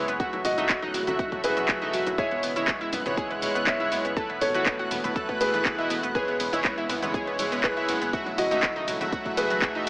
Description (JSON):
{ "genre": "progressive house", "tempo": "121 BPM", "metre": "4/4", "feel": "straight", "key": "E major", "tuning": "A4 = 440 Hz", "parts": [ { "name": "warm grand piano", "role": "melody", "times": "0.0-9.9 s", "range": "F#4 to E5", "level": "-29 LUFS", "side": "equal", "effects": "digital delay" }, { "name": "warm analog pad", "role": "sustained chords", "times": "0.0-9.9 s", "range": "C#3 to F#4", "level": "-36 LUFS", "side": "equal", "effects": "chorus, sidechain pumping" }, { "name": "analog pluck", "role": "arpeggios", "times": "0.0-9.9 s", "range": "F#3 to A4", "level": "-31 LUFS", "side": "equal", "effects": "chorus, sidechain pumping, digital delay" }, { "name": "soft supersaw", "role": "stabs", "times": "0.0-9.9 s", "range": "G#3 to E5", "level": "-30 LUFS", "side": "equal", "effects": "cassette tape, sidechain pumping, digital delay" }, { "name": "round analog bass", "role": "bass", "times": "0.0-9.9 s", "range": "E1 to G#1", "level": "-42 LUFS", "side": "equal", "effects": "sidechain pumping" }, { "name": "backwards swelling texture", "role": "texture", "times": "0.2-9.9 s", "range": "F#6", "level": "-37 LUFS", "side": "equal", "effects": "built-in reverb, sidechain pumping" }, { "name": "house drum kit", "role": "drums", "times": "0.1-9.9 s", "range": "cabasa, handclaps, hi-hat, ride cymbal", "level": "-29 LUFS", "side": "equal", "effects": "none" }, { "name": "electronic kick drum", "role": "drums", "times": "0.2-9.7 s", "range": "none", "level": "-32 LUFS", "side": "equal", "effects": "none" }, { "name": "bongos and congas", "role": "percussion", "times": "0.3-9.7 s", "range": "none", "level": "-41 LUFS", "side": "equal", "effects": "none" } ], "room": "moderate lush hall reverb, RT60 2.2 s", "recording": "AM radio sound", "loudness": "-23 LUFS", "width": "side -24 dB against mid", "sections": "0.0-9.9 A section", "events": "none", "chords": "0.2 F#m7/E; 2.2 E6; 4.2 B7sus4/E; 6.2 E6; 8.1 F#m7/E" }